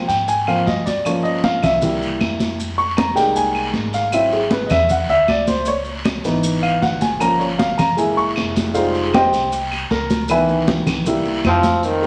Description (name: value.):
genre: Afro-Cuban jazz.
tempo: 156 BPM.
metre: 4/4.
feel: straight.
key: unclear.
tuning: A4 = 440 Hz.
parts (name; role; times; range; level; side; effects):
warm grand piano; accompaniment; 0.0-12.1 s; Eb3 to Db6; -20 LUFS; equal; none.
upright bass; bass; 0.1-12.1 s; F1 to Ab2; -31 LUFS; equal; none.
congas; percussion; 0.1-12.1 s; none; -25 LUFS; equal; none.
guiro; percussion; 0.1-12.1 s; none; -33 LUFS; equal; none.
maracas; percussion; 0.1-12.1 s; none; -38 LUFS; equal; none.
claves; percussion; 0.5-11.6 s; none; -34 LUFS; equal; none.
warm trombone; melody; 11.5-12.1 s; Eb3 to F3; -19 LUFS; equal; none.
breathy tenor saxophone; second line; 11.5-12.1 s; C4; -27 LUFS; equal; none.
room: wet large studio reverb, RT60 1.2 s.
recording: none.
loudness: -18 LUFS.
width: mono.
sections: 0.0-11.8 A section.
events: grand piano solo 0.0-11.8.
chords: 0.0 Ab69; 1.1 Gm7b5; 1.8 C7; 2.6 Fm11; 4.1 Abaug7; 5.7 Dbm7; 7.2 Gm7b5; 8.0 Gb9; 8.8 Fm9; 10.3 Dbm7; 11.1 C7.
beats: 0.28 0.67 | 1.05 1.44 1.82 2.21 | 2.60 2.98 3.37 3.75 | 4.13 4.52 4.90 5.29 | 5.67 6.06 6.44 6.83 | 7.21 7.60 7.98 8.37 | 8.75 9.13 9.52 9.90 | 10.29 10.67 11.06 11.44 | 11.83.